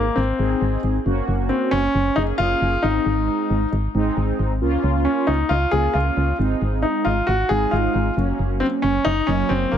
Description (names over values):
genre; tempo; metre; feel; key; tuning
synth-pop; 135 BPM; 4/4; straight; unclear; A4 = 440 Hz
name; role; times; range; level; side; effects
warm concert grand piano; melody; 0.0-9.8 s; Bb3 to Ab4; -21 LUFS; left 1 dB; tape echo
mellow synth brass; accompaniment; 0.0-9.8 s; Gb3 to Ab4; -24 LUFS; right 1 dB; chorus
solid FM bass; bass; 0.0-9.8 s; Gb1 to Db2; -22 LUFS; equal; none
room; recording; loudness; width
light reverb; none; -18 LUFS; side -9 dB against mid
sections
0.0-9.8 A section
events
none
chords
0.0 Ab; 1.1 Gb; 2.8 Ab; 4.6 Db6; 6.4 Ab; 8.2 Gb